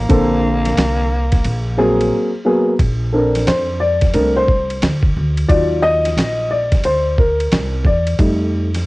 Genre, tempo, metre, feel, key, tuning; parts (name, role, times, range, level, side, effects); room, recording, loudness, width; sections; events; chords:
hip hop, jazz-hop; 89 BPM; 4/4; swing 64% on 16ths; Bb major; A4 = 441 Hz
growling tenor saxophone; melody; 0.0-2.1 s; Bb3; -22 LUFS; equal; cassette tape
upright bass; bass; 0.0-8.8 s; Bb1 to F2; -20 LUFS; equal
dark baby grand piano; accompaniment; 0.1-8.7 s; D3 to Eb5; -16 LUFS; left 1 dB; cassette tape
dusty soul sampler-style drum kit; drums; 0.1-8.9 s; hi-hat, kick drum, ride cymbal, snare drum; -18 LUFS; equal
small room ambience; home recording on cassette; -14 LUFS; side -21 dB against mid
0.0-2.8 A section; 2.8-8.9 B section
drums muted 2.1-2.8; grand piano solo 2.8-8.9
0.1 Bbmaj9; 2.1 Abm9; 2.8 Bbmaj9; 5.5 Ebmadd9; 8.2 F7